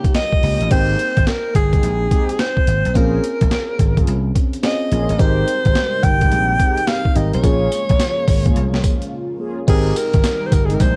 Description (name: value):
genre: R&B, new jack swing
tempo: 107 BPM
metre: 4/4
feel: swing 64% on 16ths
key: Ab major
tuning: A4 = 440 Hz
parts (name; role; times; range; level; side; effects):
- breathy alto saxophone; melody; 0.0-11.0 s; G4 to G5; -23 LUFS; equal; none
- FM electric piano; accompaniment; 0.0-11.0 s; Bb3 to G5; -28 LUFS; equal; chorus, phaser
- phased analog pad; sustained chords; 0.0-0.7, 5.2-11.0 s; C3 to G4; -31 LUFS; equal; phaser, chorus
- boom bap sampler-style drum kit; drums; 0.0-11.0 s; crash cymbal, hi-hat, kick drum, snare drum, tambourine; -20 LUFS; equal; overdrive
- mellow synth brass; stabs; 0.4-10.8 s; Ab3 to Ab4; -30 LUFS; equal; chorus
- vintage slap bass; bass; 0.4-11.0 s; G1 to Db2; -21 LUFS; equal; none
room: little or no reverb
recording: dark, warm production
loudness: -17 LUFS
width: mono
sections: 0.7-9.7 A section; 9.7-11.0 B section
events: break 9.1-9.7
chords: 0.0 Eb7; 0.7 Abmaj7; 3.0 Bbm7; 5.2 Abmaj7; 7.4 Bbm7; 9.7 Abmaj7